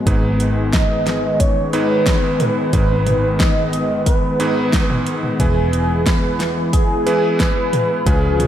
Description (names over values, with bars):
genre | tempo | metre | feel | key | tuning
synthwave | 90 BPM | 4/4 | straight | unclear | A4 = 445 Hz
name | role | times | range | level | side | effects
warm analog pad | sustained chords | 0.0-8.5 s | C#3 to E#4 | -22 LUFS | left 2 dB | chorus, sidechain pumping
picked electric bass | bass | 0.0-8.5 s | E1 to C#2 | -20 LUFS | equal | sidechain pumping
bright electric grand piano | stabs | 0.1-8.5 s | G#2 to B4 | -23 LUFS | right 3 dB | vintage 12-bit sampler grit, diffuse ambient delay
electronic kick drum | drums | 0.1-8.2 s | none | -18 LUFS | equal | studio reverb
pop drum kit | drums | 0.1-8.5 s | hi-hat, snare drum, toms | -22 LUFS | equal | studio reverb
wide unison lead | melody | 0.7-8.5 s | G#4 to D#5 | -21 LUFS | right 1 dB | tape echo
room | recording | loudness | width
moderate plate reverb, RT60 2.1 s | dreamy mix soaked in reverb | -14 LUFS | side -10 dB against mid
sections
0.0-8.5 A section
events
none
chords
0.1 G#m; 5.4 E